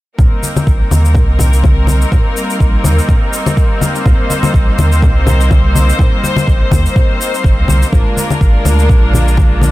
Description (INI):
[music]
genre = afro house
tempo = 124 BPM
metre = 4/4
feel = swing 55% on 16ths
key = C minor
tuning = A4 = 440 Hz
[part]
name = clear symphonic string section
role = sustained chords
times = 0.2-9.7 s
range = G3 to C5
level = -17 LUFS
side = left 1 dB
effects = sidechain pumping
[part]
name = warm sub bass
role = bass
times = 0.2-9.7 s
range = G1 to Eb2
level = -12 LUFS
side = equal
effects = sidechain pumping
[part]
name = electronic kick drum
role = drums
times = 0.2-9.5 s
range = none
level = -11 LUFS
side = equal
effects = none
[part]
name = shaker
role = drums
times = 0.2-9.7 s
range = none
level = -24 LUFS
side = left 2 dB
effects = overdrive
[part]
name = congas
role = percussion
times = 0.2-9.7 s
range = none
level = -17 LUFS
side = left 2 dB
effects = none
[sound]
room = studio ambience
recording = none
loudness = -9 LUFS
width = side -17 dB against mid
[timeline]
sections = 0.2-9.7 A section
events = filter sweep on sub bass 0.2-9.7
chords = 0.2 Cm7; 7.9 Bb7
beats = | 0.19 0.67 1.15 1.64 | 2.12 2.60 3.09 3.57 | 4.06 4.54 5.02 5.51 | 5.99 6.48 6.96 7.44 | 7.93 8.41 8.89 9.38